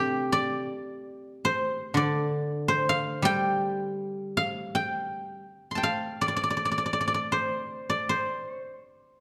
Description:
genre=chinese traditional, Chinese solo plucked strings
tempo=82 BPM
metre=4/4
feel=rubato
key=C zhi mode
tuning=A4 = 440 Hz
part: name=guzheng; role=solo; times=0.0-9.2 s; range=C3 to C6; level=-28 LUFS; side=equal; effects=none
room=moderate scoring stage reverb, RT60 1.6 s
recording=dark, warm production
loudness=-28 LUFS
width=mono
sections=0.0-9.2 A section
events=none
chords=none

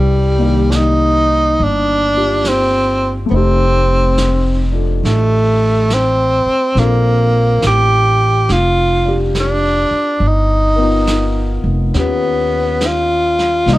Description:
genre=jazz ballad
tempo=70 BPM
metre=4/4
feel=swing 66% on 8ths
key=G minor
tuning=A4 = 441 Hz
part: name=breathy tenor saxophone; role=melody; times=0.0-13.8 s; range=G3 to G4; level=-14 LUFS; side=equal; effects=none
part: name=warm baby grand piano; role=accompaniment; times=0.0-13.8 s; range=Eb3 to D5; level=-21 LUFS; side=left 3 dB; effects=none
part: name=upright bass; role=bass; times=0.0-13.8 s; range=F1 to D#2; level=-16 LUFS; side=equal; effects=none
part: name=vintage brush drum kit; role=drums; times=0.7-13.8 s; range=brushed snare drum, hi-hat, snare drum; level=-26 LUFS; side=right 2 dB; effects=none
room=little or no reverb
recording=dark, warm production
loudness=-12 LUFS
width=side -17 dB against mid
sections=0.0-13.8 A section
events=none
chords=0.0 Cm9; 3.3 F9; 6.8 Bbmaj9; 10.2 G7alt

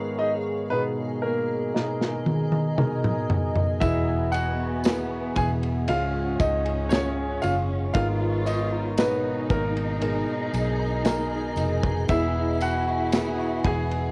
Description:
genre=pop ballad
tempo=58 BPM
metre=4/4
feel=straight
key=unclear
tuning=A4 = 440 Hz
part: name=dark baby grand piano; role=accompaniment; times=0.0-14.1 s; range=Ab2 to Db5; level=-32 LUFS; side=equal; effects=none
part: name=granular cloud pad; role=sustained chords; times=0.0-14.1 s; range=Ab4 to Db6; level=-37 LUFS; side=equal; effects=built-in reverb
part: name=clear baby grand piano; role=melody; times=0.2-14.1 s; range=Bb3 to G#5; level=-31 LUFS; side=equal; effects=cassette tape
part: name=modern studio drum kit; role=drums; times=1.8-14.1 s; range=kick drum, ride cymbal, snare drum, toms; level=-29 LUFS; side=equal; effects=cassette tape
part: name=dark symphonic cello section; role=second line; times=3.8-14.1 s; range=B3 to F4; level=-36 LUFS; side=equal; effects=none
part: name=clean electric guitar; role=arpeggios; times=3.8-14.1 s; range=Ab2 to Bb4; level=-38 LUFS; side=equal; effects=none
part: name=vintage muted fingered electric bass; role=bass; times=3.8-14.1 s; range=E1 to Db2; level=-31 LUFS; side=equal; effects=none
part: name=tambourine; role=percussion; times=3.8-13.4 s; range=none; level=-48 LUFS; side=equal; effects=none
room=light reverb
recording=home recording on cassette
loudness=-25 LUFS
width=mono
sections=0.0-14.1 A section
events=drum fill 1.7-3.8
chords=0.0 Abmadd9; 3.8 Eadd9; 5.9 Db; 7.9 Abmadd9; 12.1 Eadd9

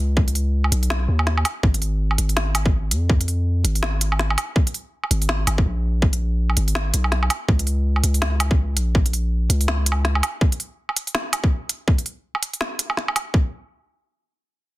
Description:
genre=half-time drum and bass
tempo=164 BPM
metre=4/4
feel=swing 59% on 16ths, half-time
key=unclear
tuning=A4 = 440 Hz
part: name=long sustained 808-style bass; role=bass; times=0.0-10.2 s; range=Ab1 to F2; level=-20 LUFS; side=equal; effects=none
part: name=electronic kick drum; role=drums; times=0.2-13.4 s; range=none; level=-18 LUFS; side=equal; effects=overdrive, small room ambience
part: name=organic electronic drum kit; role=drums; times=0.3-13.2 s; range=hi-hat, snare drum, woodblock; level=-23 LUFS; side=right 1 dB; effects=small room ambience, soft clipping on snare
room=little or no reverb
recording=dense, heavily limited modern master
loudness=-19 LUFS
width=side -18 dB against mid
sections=0.0-13.3 A section; 13.3-14.8 B section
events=drop 0.0-13.3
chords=none

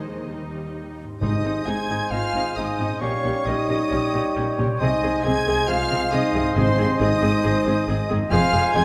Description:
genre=classical, dramatic, fast romantic movement for symphony orchestra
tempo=134 BPM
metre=4/4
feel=rubato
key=Ab major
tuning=A4 = 441 Hz
part: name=warm symphonic violin section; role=melody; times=0.0-8.8 s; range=C5 to Ab6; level=-34 LUFS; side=equal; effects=none
part: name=warm studio violin section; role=second line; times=0.0-8.8 s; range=C5 to Ab5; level=-36 LUFS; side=equal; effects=none
part: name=clear symphonic viola section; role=accompaniment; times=0.0-8.8 s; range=G3 to Ab4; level=-33 LUFS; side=equal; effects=none
part: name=concert harp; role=arpeggios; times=0.0-8.8 s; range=F2 to Ab4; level=-38 LUFS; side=equal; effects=none
part: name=clear symphonic double bass section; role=bass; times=0.0-8.8 s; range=F1 to Eb2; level=-31 LUFS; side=equal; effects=none
part: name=rich symphonic cello section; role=bass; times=0.0-8.8 s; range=Eb2 to C3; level=-30 LUFS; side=equal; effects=none
part: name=hollow concert flute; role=second line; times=1.2-8.8 s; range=C5 to Ab5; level=-31 LUFS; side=equal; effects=none
part: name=mellow oboe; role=second line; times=1.2-8.8 s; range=C5 to Db5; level=-32 LUFS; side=equal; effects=none
part: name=mellow bassoon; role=accompaniment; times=1.2-8.8 s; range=G3 to Ab3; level=-33 LUFS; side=equal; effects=none
part: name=mellow French horn section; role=sustained chords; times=1.2-8.8 s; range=C4 to Ab4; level=-30 LUFS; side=equal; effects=none
part: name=timpani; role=percussion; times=1.2-1.9, 6.6-7.2 s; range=Ab2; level=-30 LUFS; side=equal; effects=none
part: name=mellow clarinet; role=second line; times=2.1-8.8 s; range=C5 to Ab5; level=-32 LUFS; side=equal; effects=none
room=moderate concert hall reverb, RT60 2.1 s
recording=none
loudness=-22 LUFS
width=mono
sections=0.0-1.2 A section; 1.2-8.8 B section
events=none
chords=0.3 Eb; 1.2 Ab; 3.0 Eb7/Bb; 4.8 Ab/C; 6.6 Ab; 8.3 Fm

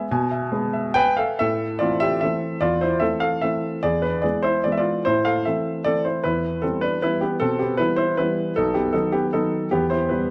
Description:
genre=classical, piano waltz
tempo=133-164 BPM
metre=3/4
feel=rubato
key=A minor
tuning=A4 = 442 Hz
part: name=warm baby grand piano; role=solo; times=0.0-10.3 s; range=B1 to G#5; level=-22 LUFS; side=equal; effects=none
room=moderate recital hall reverb, RT60 1.8 s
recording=close, detailed microphones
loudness=-22 LUFS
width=mono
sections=0.0-1.4 A section; 1.4-10.3 B section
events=none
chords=0.0 E; 1.4 Am; 3.8 E7; 5.0 Am; 6.2 Em; 8.6 B7; 9.7 Em

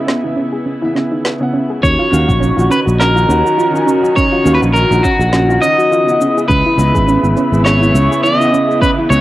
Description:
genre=sunset chillout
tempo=103 BPM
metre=4/4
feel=swing 56% on 16ths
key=Eb phrygian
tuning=A4 = 440 Hz
part: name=electric guitar at the edge of break-up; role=melody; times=0.0-9.2 s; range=Gb4 to Eb5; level=-14 LUFS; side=equal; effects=spring reverb
part: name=warm baby grand piano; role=accompaniment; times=0.0-9.2 s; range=Db3 to Ab5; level=-22 LUFS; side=right 1 dB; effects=auto-pan, cassette tape, tape echo
part: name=dark studio string section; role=sustained chords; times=0.0-9.2 s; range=Db3 to Gb4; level=-18 LUFS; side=left 1 dB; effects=vintage 12-bit sampler grit, cassette tape
part: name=soft round pluck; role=arpeggios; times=0.0-9.2 s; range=Db4 to Cb5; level=-18 LUFS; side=right 2 dB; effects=chorus, cassette tape, tape echo
part: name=wind-like tuned noise texture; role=texture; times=0.0-1.8 s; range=Ab5 to Ab6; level=-44 LUFS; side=left 2 dB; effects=none
part: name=electronic snare drum and shaker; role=drums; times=0.1-9.2 s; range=none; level=-23 LUFS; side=equal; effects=cassette tape
part: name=sustaining fretless electric bass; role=bass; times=1.8-9.2 s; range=Ab1 to Eb2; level=-14 LUFS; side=equal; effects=none
part: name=electronic kick drum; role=drums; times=1.8-8.9 s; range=none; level=-17 LUFS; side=equal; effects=cassette tape
room=moderate booth ambience, RT60 0.2 s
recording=home recording on cassette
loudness=-10 LUFS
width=side -15 dB against mid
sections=0.0-1.8 A section; 1.8-9.2 B section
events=filter sweep on synth arpeggio sound 0.0-1.8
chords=0.0 Dbm9; 1.8 Ebm9; 6.2 Dbm9

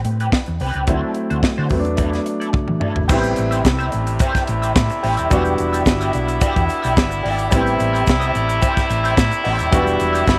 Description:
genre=disco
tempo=109 BPM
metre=4/4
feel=straight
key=A dorian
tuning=A4 = 440 Hz
part: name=warm baby grand piano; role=accompaniment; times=0.0-10.4 s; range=F#3 to F#4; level=-26 LUFS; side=equal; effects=none
part: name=hollow-body short-scale fingered electric bass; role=bass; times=0.0-10.4 s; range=D#1 to E3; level=-24 LUFS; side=equal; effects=none
part: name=tight funk drum kit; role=drums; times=0.0-10.4 s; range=crash cymbal, hi-hat, kick drum, snare drum, toms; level=-22 LUFS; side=equal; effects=none
part: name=electric guitar at the edge of break-up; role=accompaniment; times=0.1-10.3 s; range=C4 to E5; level=-27 LUFS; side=equal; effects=wah, spring reverb
part: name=muted French horn section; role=sustained chords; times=3.1-10.4 s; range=C3 to E4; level=-24 LUFS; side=equal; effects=none
part: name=egg shaker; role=percussion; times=3.1-10.4 s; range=none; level=-41 LUFS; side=equal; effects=none
room=light reverb, small room ambience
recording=none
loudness=-18 LUFS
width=mono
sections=0.0-3.1 A section; 3.1-10.4 B section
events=drum fill 2.5-3.1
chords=0.0 Am9; 0.9 D7; 1.7 E7sus4; 3.1 Am7; 5.3 Em7; 7.5 Am7; 9.7 Em7

